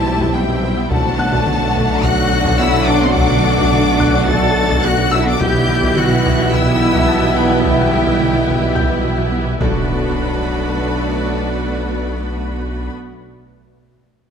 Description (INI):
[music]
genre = cinematic, hybrid orchestral and electronic film score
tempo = 107 BPM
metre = 4/4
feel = straight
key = B minor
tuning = A4 = 440 Hz
[part]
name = warm symphonic violin section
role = melody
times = 0.0-12.9 s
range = G5 to A6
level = -23 LUFS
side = left 4 dB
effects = none
[part]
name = warm symphonic violin section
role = second line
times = 0.0-12.9 s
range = F#4 to F#5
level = -23 LUFS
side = left 4 dB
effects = none
[part]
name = rich symphonic viola section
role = accompaniment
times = 0.0-12.9 s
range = A3 to F#4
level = -24 LUFS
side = right 2 dB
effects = none
[part]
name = dark trombone section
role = sustained chords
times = 0.0-12.9 s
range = B2 to G3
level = -25 LUFS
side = right 3 dB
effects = none
[part]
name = mellow French horn section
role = sustained chords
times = 0.0-12.9 s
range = A3 to G4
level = -23 LUFS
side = left 3 dB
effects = none
[part]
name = swarming drone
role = sustained chords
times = 0.0-12.9 s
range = F#3 to E5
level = -26 LUFS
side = equal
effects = none
[part]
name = mellow tuba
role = bass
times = 0.0-12.9 s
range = B1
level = -24 LUFS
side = right 4 dB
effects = none
[part]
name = warm studio cello section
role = bass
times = 0.0-12.9 s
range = G3 to A4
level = -23 LUFS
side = equal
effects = none
[part]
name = warm sub bass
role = bass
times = 0.0-12.9 s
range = B1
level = -25 LUFS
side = left 1 dB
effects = none
[part]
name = warm symphonic double bass section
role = bass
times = 0.0-12.9 s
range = B1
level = -24 LUFS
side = right 4 dB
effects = none
[part]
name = felt-muted upright piano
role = texture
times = 0.0-9.9 s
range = F#5 to A6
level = -29 LUFS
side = left 3 dB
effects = none
[part]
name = rubbery square bass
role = riff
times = 0.1-9.5 s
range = B2 to B3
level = -24 LUFS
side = right 1 dB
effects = none
[part]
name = taiko ensemble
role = drums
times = 0.2-10.7 s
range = none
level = -23 LUFS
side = equal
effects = none
[part]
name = impact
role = sound effects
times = 9.6-13.6 s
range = none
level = -27 LUFS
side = equal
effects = none
[sound]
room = moderate scoring stage reverb, RT60 1.8 s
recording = none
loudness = -13 LUFS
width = side -7 dB against mid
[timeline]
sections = 0.0-9.9 A section; 9.9-12.1 B section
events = impact 9.9-12.1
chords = 0.0 B7(no3); 0.9 D/B; 5.4 Em/B; 9.6 Bm7